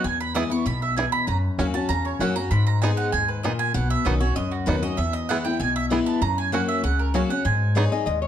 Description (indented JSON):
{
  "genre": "bluegrass",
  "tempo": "194 BPM",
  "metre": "4/4",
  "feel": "straight",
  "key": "unclear",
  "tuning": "A4 = 440 Hz",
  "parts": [
    { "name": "bluegrass banjo", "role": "melody", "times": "0.0-7.8 s", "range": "B3 to G#4", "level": "-29 LUFS", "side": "right 4 dB", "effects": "none" },
    { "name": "picked steel-string acoustic guitar", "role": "accompaniment", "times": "0.0-8.3 s", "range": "E2 to G#4", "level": "-25 LUFS", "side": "left 4 dB", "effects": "none" },
    { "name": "mandolin", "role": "stabs", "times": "0.0-8.3 s", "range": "F#4 to D#6", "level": "-27 LUFS", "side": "right 6 dB", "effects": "none" },
    { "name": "upright bass", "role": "bass", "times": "0.0-8.3 s", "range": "B1 to G#2", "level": "-25 LUFS", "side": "equal", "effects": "none" },
    { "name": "lap resonator guitar", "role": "second line", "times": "7.8-8.3 s", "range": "C#5 to D#5", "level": "-26 LUFS", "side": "left 8 dB", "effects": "none" }
  ],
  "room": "light reverb",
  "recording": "dark, warm production",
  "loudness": "-21 LUFS",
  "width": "side -10 dB against mid",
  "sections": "0.0-8.3 A section",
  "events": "mandolin solo 0.0-8.3",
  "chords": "0.0 E; 1.3 F#; 2.5 G#m; 3.8 Badd9; 5.0 E; 6.2 F#; 7.5 G#m"
}